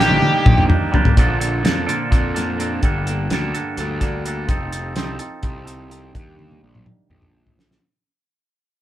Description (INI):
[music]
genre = psychedelic rock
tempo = 253 BPM (eighths)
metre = 7/8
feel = straight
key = unclear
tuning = A4 = 440 Hz
[part]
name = octave-fuzz lead guitar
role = melody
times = 0.0-0.6 s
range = G4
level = -18 LUFS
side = left 1 dB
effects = wah, distortion
[part]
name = twangy electric guitar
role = riff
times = 0.0-7.8 s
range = G2 to A4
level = -22 LUFS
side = right 2 dB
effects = low-pass filter
[part]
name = fuzz picked electric bass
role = bass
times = 0.0-7.8 s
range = F1 to F2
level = -26 LUFS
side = equal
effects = overdrive
[part]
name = cloth-damped thuddy drum kit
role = drums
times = 0.1-7.8 s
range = hi-hat, kick drum, snare drum, toms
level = -17 LUFS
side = equal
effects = none
[sound]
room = moderate small room ambience, RT60 0.5 s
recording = band playing live in one room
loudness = -16 LUFS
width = side -13 dB against mid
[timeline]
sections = 0.0-1.2 A section; 1.2-7.8 B section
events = drum fill 0.0-1.2, 6.4-7.8; fade-out 1.2-7.8; filter sweep on clean electric guitar 1.2-7.8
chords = 0.0 Ebmaj7; 1.2 Bbmaj7; 2.8 Gmadd9; 4.5 F7; 6.1 Ebmaj7